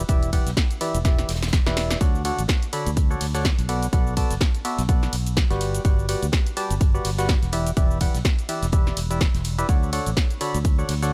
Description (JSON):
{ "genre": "piano house", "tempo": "125 BPM", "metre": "4/4", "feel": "swing 57% on 16ths", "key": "E dorian", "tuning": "A4 = 437 Hz", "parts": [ { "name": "percussive organ stab", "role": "riff", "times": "0.0-11.1 s", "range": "D3 to B5", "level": "-30 LUFS", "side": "equal", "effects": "chorus, sidechain pumping, dub echo" }, { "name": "fingered electric bass", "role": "bass", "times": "0.0-11.1 s", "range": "E1 to D2", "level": "-28 LUFS", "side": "equal", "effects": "sidechain pumping" }, { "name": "electronic kick drum", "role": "drums", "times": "0.1-10.8 s", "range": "none", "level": "-23 LUFS", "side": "equal", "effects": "none" }, { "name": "natural country drum kit", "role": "drums", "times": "0.1-11.1 s", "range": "hi-hat, snare drum", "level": "-42 LUFS", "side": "equal", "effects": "none" }, { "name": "punchy analog drum machine", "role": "drums", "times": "0.1-11.1 s", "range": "hi-hat, ride cymbal, shaker, snare drum", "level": "-32 LUFS", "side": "equal", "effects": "none" } ], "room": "digital ambience", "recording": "none", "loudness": "-22 LUFS", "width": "mono", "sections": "0.0-11.1 A section", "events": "drum fill 1.0-2.0", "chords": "0.0 Em7; 2.0 Dmaj7; 3.7 Bm7; 5.6 Gmaj7; 7.5 Em7; 9.7 Dmaj7" }